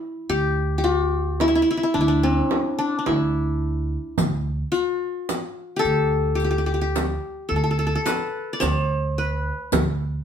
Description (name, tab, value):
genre	Arabic maqam ensemble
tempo	108 BPM (eighths)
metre	10/8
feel	straight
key	D maqam rast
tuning	A4 = 439 Hz
part	qanun	melody	0.0-10.2 s	C4+50c to D5	-22 LUFS	left 2 dB	none
part	upright bass	bass	0.3-10.2 s	D2	-24 LUFS	right 1 dB	none
part	frame drum	percussion	1.4-10.0 s	none	-25 LUFS	right 2 dB	none
part	riq	percussion	4.2-10.0 s	none	-31 LUFS	left 2 dB	none
room	moderate studio reverb, RT60 0.7 s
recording	band playing live in one room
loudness	-20 LUFS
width	side -8 dB against mid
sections	0.0-10.2 A section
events	none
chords	none